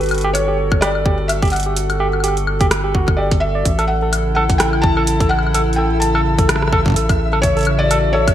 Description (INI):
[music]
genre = IDM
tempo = 127 BPM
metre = 4/4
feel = swing 56% on 16ths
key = unclear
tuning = A4 = 444 Hz
[part]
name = felt-muted upright piano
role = melody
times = 0.0-8.3 s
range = B4 to A5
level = -22 LUFS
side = left 1 dB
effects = ping-pong delay
[part]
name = hollow soft pad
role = sustained chords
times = 0.0-8.3 s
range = C#3 to A4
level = -22 LUFS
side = equal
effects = chorus
[part]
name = round analog bass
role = bass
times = 0.0-8.3 s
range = G1 to A1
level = -20 LUFS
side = equal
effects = none
[part]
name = electro analog drum machine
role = drums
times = 0.0-8.3 s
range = hi-hat, rim click, woodblock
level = -22 LUFS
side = left 1 dB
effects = none
[part]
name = overdriven tine electric piano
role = arpeggios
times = 0.2-8.3 s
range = F#4 to D5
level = -22 LUFS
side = right 2 dB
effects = ping-pong delay
[part]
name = electronic kick drum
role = drums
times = 0.7-8.3 s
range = none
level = -17 LUFS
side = equal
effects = overdrive
[part]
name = flickering grainy texture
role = texture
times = 4.2-8.3 s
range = E5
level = -30 LUFS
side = equal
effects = built-in reverb
[sound]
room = light reverb, digital ambience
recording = bright 1980s-style digital production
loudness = -14 LUFS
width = side -11 dB against mid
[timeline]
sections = 0.0-8.3 A section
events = none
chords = 0.0 Gmaj7sus2; 3.7 A